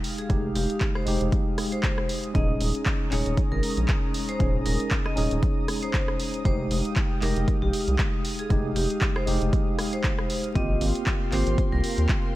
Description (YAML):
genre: deep house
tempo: 117 BPM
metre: 4/4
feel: swing 56% on 16ths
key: F minor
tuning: A4 = 440 Hz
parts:
  - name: airy breathy pad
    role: sustained chords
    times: 0.0-12.4 s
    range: Ab3 to Eb6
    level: -36 LUFS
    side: equal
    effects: chorus, sidechain pumping
  - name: tine electric piano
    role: stabs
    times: 0.0-12.4 s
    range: Ab3 to Ab4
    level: -30 LUFS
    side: equal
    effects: fast stereo tremolo, sidechain pumping
  - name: punchy analog drum machine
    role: drums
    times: 0.0-12.2 s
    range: handclaps, hi-hat, rim click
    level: -32 LUFS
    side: equal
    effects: studio reverb
  - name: vibraphone with hard mallets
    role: melody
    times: 0.2-12.0 s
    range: G4 to Eb5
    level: -34 LUFS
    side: equal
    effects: ping-pong delay
  - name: round analog bass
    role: bass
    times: 0.3-12.1 s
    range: Eb1 to Eb2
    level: -26 LUFS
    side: equal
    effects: tube saturation
  - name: electronic kick drum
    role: drums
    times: 0.3-12.2 s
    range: none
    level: -26 LUFS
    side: equal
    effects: overdrive, studio reverb
room: digital ambience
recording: vinyl crackle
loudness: -22 LUFS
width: side -16 dB against mid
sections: 0.0-12.4 A section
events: none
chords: 0.0 Fm9; 2.4 Eb7sus4; 6.5 Fm9; 10.6 Abmaj13